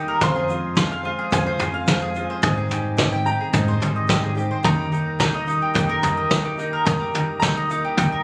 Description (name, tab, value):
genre	indie folk with a building arrangement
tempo	108 BPM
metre	4/4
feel	straight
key	unclear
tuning	A4 = 440 Hz
part	felt-muted upright piano	accompaniment	0.0-8.2 s	F1 to Eb5	-34 LUFS	equal	none
part	picked acoustic archtop guitar	accompaniment	0.0-8.2 s	F2 to Ab4	-35 LUFS	equal	none
part	pipe organ, sparkling flutes	sustained chords	0.0-8.2 s	Eb3 to Bb4	-36 LUFS	equal	none
part	mandolin	arpeggios	0.0-8.2 s	G3 to G5	-27 LUFS	equal	analog delay
part	upright bass	bass	0.0-8.2 s	Eb2 to Ab2	-30 LUFS	equal	none
part	bright upright piano	melody	0.2-8.2 s	G5 to C6	-31 LUFS	equal	analog delay
part	vintage brush drum kit	drums	0.2-8.1 s	kick drum, snare drum, toms	-25 LUFS	equal	none
part	egg shaker	percussion	0.2-8.1 s	none	-47 LUFS	equal	none
room	light reverb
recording	recorded on a phone in the room, club ambience, compression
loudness	-21 LUFS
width	mono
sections	0.0-8.2 A section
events	none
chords	0.2 Fm; 2.4 Abmaj7; 4.7 Eb